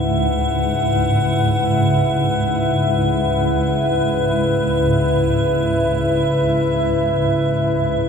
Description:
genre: dark ambient drone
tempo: free time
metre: none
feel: none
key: unclear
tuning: A4 = 444 Hz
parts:
  - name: dark analog pad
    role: sustained chords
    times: 0.0-8.1 s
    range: C#3 to F#5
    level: -18 LUFS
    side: left 1 dB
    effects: chorus
  - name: swarming drone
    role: drone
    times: 0.0-8.1 s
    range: C#2 to G#2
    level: -21 LUFS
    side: right 1 dB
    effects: built-in reverb
  - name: icy glass pad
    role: texture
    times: 0.0-8.1 s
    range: E5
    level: -25 LUFS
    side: right 1 dB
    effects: chorus, built-in reverb
room: wet huge ambient reverb, RT60 8.4 s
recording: dark, warm production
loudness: -16 LUFS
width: side -6 dB against mid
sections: 0.0-8.1 A section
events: filter sweep on synth drone 0.0-8.1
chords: 0.0 E5/C#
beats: free time

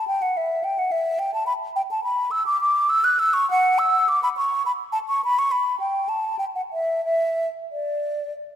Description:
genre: classical, baroque-style fantasia for unaccompanied flute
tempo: 88-110 BPM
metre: 3/4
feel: rubato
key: D major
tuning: A4 = 440 Hz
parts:
  - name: mellow hollow concert flute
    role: solo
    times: 0.0-8.3 s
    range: D5 to F#6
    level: -20 LUFS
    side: equal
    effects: none
room: wet concert hall reverb, RT60 2.1 s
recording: none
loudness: -20 LUFS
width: side -10 dB against mid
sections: 0.0-8.6 A section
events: none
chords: none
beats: | 0.10 0.65 1.21 | 1.77 2.32 2.89 | 3.49 4.07 4.64 | 5.21 5.79 6.39 | 7.05 7.71

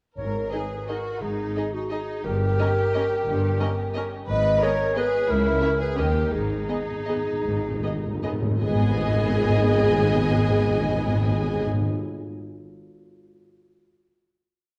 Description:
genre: classical, orchestral ballroom waltz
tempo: 148-194 BPM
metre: 3/4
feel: rubato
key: G# minor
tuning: A4 = 440 Hz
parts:
  - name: dark clarinet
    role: second line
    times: 0.2-11.7 s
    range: F#4 to D#5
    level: -29 LUFS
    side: equal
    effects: none
  - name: rich studio violin section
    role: second line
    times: 0.2-11.7 s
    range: D#4 to G#5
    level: -35 LUFS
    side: equal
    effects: none
  - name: rich symphonic cello section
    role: bass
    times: 0.2-11.7 s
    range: C#2 to G#2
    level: -32 LUFS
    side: equal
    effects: none
  - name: warm studio double bass section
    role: bass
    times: 0.2-11.7 s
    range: G1 to D#2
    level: -32 LUFS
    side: equal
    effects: none
  - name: timpani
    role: percussion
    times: 0.2-0.7, 6.3-11.9 s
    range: G#2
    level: -29 LUFS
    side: equal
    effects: none
  - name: rich chamber violin section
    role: melody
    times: 0.5-11.6 s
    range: D#5 to E5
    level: -36 LUFS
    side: equal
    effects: none
  - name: rich studio viola section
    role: accompaniment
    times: 0.5-11.7 s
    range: B3 to A#4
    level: -32 LUFS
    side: equal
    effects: none
room: wet scoring stage reverb, RT60 1.4 s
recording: worn, warbling old tape, cassette tape, warbly pitch drift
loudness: -24 LUFS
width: mono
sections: 0.2-8.6 A section; 8.6-10.9 final chord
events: slowing down 5.8-8.6; timpani fill 6.3-8.6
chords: 0.2 G#5; 2.3 D#7/G (rootless); 4.3 G#m; 5.3 A#dim/C#; 6.0 D#; 6.3 G#m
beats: | 0.19 0.53 0.89 | 1.23 1.57 1.92 | 2.25 2.59 2.95 | 3.28 3.61 3.96 | 4.29 4.63 4.97 | 5.30 5.62 5.98 | 6.33 6.69 7.08 | 7.45 7.83 8.23 | 8.61 8.99 9.38 | 9.76 10.13 10.53

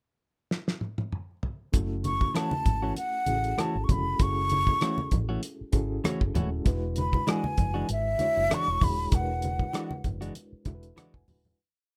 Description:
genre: lush 1970s-style soul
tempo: 98 BPM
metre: 4/4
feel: swing 54% on 16ths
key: F# minor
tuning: A4 = 441 Hz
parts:
  - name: cloth-damped thuddy drum kit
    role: drums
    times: 0.5-11.4 s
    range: hi-hat, kick drum, rim click, snare drum, toms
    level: -30 LUFS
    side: equal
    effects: none
  - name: reed electric piano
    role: accompaniment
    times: 1.7-11.6 s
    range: G#3 to G#5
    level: -39 LUFS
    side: equal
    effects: fast tremolo
  - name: vintage muted fingered electric bass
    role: bass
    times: 1.7-11.5 s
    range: D#1 to A1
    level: -34 LUFS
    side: equal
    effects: none
  - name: congas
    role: percussion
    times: 1.7-11.6 s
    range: none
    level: -36 LUFS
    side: equal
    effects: none
  - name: breathy concert flute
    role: melody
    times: 2.1-10.1 s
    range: E5 to C#6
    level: -31 LUFS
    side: equal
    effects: none
  - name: clean electric guitar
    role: riff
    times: 2.3-11.1 s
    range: E3 to F#4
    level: -33 LUFS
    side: equal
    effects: none
room: light reverb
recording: rough home demo mix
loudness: -28 LUFS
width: mono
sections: 0.0-1.7 pickup bar; 1.7-11.6 verse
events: drum fill 0.5-1.7; fade-out 9.1-11.6; reed electric piano fill 10.4-11.6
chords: 0.0 N.C.; 1.7 F#m7; 6.7 E9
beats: 0.50 1.12 | 1.74 2.35 2.97 3.58 | 4.20 4.82 5.43 6.05 | 6.66 7.28 7.89 8.51 | 9.12 9.74 10.36 10.97

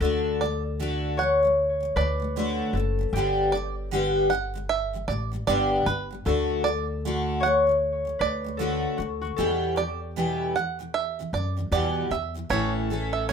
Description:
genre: acoustic pop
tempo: 77 BPM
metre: 4/4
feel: swing 60% on 16ths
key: D major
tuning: A4 = 440 Hz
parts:
  - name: concert harp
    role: melody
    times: 0.0-13.3 s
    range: F#4 to E5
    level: -27 LUFS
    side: left 4 dB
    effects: plate reverb, tape echo
  - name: picked steel-string acoustic guitar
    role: accompaniment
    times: 0.0-13.3 s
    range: E2 to A4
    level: -27 LUFS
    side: equal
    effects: double-tracked left and right
  - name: upright bass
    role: bass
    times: 0.0-13.3 s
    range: F#1 to F#2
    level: -30 LUFS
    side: equal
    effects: none
  - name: bluegrass banjo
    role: arpeggios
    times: 0.4-13.3 s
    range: B4 to F#5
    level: -28 LUFS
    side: right 8 dB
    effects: plate reverb
room: moderate studio reverb, RT60 0.5 s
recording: rough home demo mix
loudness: -23 LUFS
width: side -6 dB against mid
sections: 0.0-12.5 A section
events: none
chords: 0.0 D; 3.1 G; 6.3 D; 9.4 Em; 12.5 A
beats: | 0.01 0.79 1.57 2.35 | 3.13 3.92 4.70 5.48 | 6.26 7.04 7.82 8.60 | 9.38 10.16 10.94 11.72 | 12.51 13.29

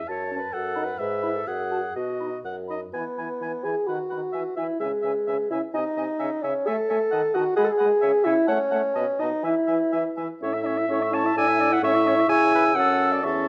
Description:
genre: quick classical-period movement for wind quintet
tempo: 121-135 BPM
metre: 2/4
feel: rubato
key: E major, A major from 10.4 s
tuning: A4 = 440 Hz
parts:
  - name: warm oboe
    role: second line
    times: 0.0-13.5 s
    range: A4 to A5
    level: -34 LUFS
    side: equal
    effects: none
  - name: clear clarinet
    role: accompaniment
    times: 0.1-13.5 s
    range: F#4 to A5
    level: -30 LUFS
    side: equal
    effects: none
  - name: dark bassoon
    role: bass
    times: 0.1-13.5 s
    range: E2 to A4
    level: -27 LUFS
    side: equal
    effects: none
  - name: concert flute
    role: melody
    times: 0.3-13.5 s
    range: G#5 to E6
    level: -31 LUFS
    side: equal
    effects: none
  - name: clear French horn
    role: accompaniment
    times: 0.3-13.5 s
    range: B2 to F#4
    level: -32 LUFS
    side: equal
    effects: none
room: moderate large studio reverb, RT60 1.2 s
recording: dark, warm production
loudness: -24 LUFS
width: mono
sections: 0.0-2.9 A section; 2.9-10.4 B section; 10.4-13.5 A section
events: none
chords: 0.1 F#m; 0.5 B7/F#; 1.0 E/G#; 1.5 N.C.; 1.9 B; 2.9 E; 3.9 B/D#; 4.3 E5; 4.8 C#m7; 5.7 G#/B# (rootless); 6.2 C#m; 6.7 A; 7.1 D#dim; 7.6 G#7(no3); 8.0 C#m; 8.5 F#m/A; 9.0 B; 9.4 E5; 10.4 A; 11.4 E7/A; 11.8 A; 12.3 C#m; 12.7 F#m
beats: | 0.07 0.53 | 0.99 1.46 | 1.95 2.44 | 2.93 3.41 | 3.88 4.34 | 4.80 5.27 | 5.74 6.19 | 6.66 7.11 | 7.57 8.02 | 8.48 8.95 | 9.44 9.93 | 10.42 10.89 | 11.36 11.82 | 12.28 12.74 | 13.23

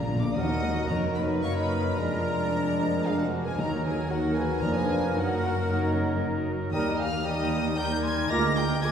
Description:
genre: quick classical-period movement for symphony orchestra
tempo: 113 BPM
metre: 3/4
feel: rubato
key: Eb minor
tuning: A4 = 440 Hz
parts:
  - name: warm chamber violin section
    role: melody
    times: 0.0-8.9 s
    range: F5 to Bb6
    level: -35 LUFS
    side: left 4 dB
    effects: none
  - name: mellow hollow concert flute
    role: second line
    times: 0.0-8.9 s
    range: Ab4 to D6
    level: -35 LUFS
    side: equal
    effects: none
  - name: warm chamber violin section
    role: second line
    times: 0.0-8.9 s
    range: Bb3 to Bb5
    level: -37 LUFS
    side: left 2 dB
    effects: none
  - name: dark chamber cello section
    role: bass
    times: 0.0-8.9 s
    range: D2 to Gb2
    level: -33 LUFS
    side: right 1 dB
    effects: none
  - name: warm chamber double bass section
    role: bass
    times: 0.0-8.9 s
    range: F1 to Eb2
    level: -33 LUFS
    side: right 1 dB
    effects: none
  - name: timpani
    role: percussion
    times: 0.0-1.1, 3.6-7.5 s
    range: Bb2 to Eb3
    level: -34 LUFS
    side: left 2 dB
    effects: none
  - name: warm studio viola section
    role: accompaniment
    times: 0.1-8.9 s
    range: F3 to Ab4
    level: -34 LUFS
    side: right 2 dB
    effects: none
  - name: dark clarinet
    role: second line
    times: 0.4-8.9 s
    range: D4 to F4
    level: -35 LUFS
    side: equal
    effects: none
  - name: warm oboe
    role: second line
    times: 0.4-8.9 s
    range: Bb4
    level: -37 LUFS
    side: right 2 dB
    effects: none
  - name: warm bassoon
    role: accompaniment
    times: 0.4-8.9 s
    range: F3 to Ab3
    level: -36 LUFS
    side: right 1 dB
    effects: none
  - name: mellow French horn section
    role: sustained chords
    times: 0.4-8.5 s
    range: F3 to F4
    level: -33 LUFS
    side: left 2 dB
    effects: none
  - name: dark trumpet section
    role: stabs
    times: 0.4-8.5 s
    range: Bb4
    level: -35 LUFS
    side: equal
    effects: none
room: wet scoring stage reverb, RT60 1.6 s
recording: heard from further back in the room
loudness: -24 LUFS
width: side -8 dB against mid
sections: 0.4-8.9 A section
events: timpani fill 0.0-0.4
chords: 0.4 Ebm; 1.4 Ebm/Gb; 2.0 Bb7/F; 3.6 Ebm; 4.6 Bb7/F; 5.2 Ebm/Gb; 6.7 Eb; 8.3 Bb7/D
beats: | 0.37 0.92 1.45 | 1.99 2.52 3.06 | 3.58 4.11 4.63 | 5.15 5.67 6.20 | 6.73 7.25 7.77 | 8.30 8.84

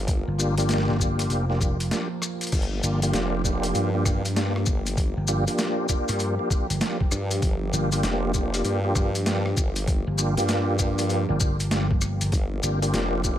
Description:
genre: glitch hop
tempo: 98 BPM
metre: 4/4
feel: swing 64% on 16ths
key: G minor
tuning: A4 = 441 Hz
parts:
  - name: warm analog pad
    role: sustained chords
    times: 0.0-13.4 s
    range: F3 to G4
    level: -32 LUFS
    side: right 2 dB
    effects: chorus, sidechain pumping
  - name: formant-sweep wobble bass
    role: bass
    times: 0.0-13.4 s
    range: F1 to G2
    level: -27 LUFS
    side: equal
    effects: chorus, tube saturation
  - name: boom bap sampler-style drum kit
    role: drums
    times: 0.1-13.1 s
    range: crash cymbal, hi-hat, rim click, snare drum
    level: -30 LUFS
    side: equal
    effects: overdrive, studio ambience
  - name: electronic kick drum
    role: drums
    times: 0.1-13.4 s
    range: none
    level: -24 LUFS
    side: equal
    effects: overdrive, studio ambience
  - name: maracas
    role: percussion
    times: 0.1-13.4 s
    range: none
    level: -32 LUFS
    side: left 4 dB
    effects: none
  - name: vintage slap bass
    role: bass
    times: 0.3-12.9 s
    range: F1 to G2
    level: -25 LUFS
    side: equal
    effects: none
  - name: tonewheel organ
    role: stabs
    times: 0.4-13.4 s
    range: Bb3 to G4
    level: -28 LUFS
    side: equal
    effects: overdrive, chorus vibrato, slow rotary speaker, sidechain pumping, dub echo
room: little or no reverb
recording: none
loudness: -22 LUFS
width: side -11 dB against mid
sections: 0.0-13.4 A section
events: break 1.9-2.5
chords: 0.0 Gm7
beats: | 0.08 0.69 1.30 1.92 | 2.53 3.14 3.75 4.36 | 4.98 5.59 6.20 6.81 | 7.43 8.04 8.65 9.26 | 9.88 10.49 11.10 11.71 | 12.32 12.94

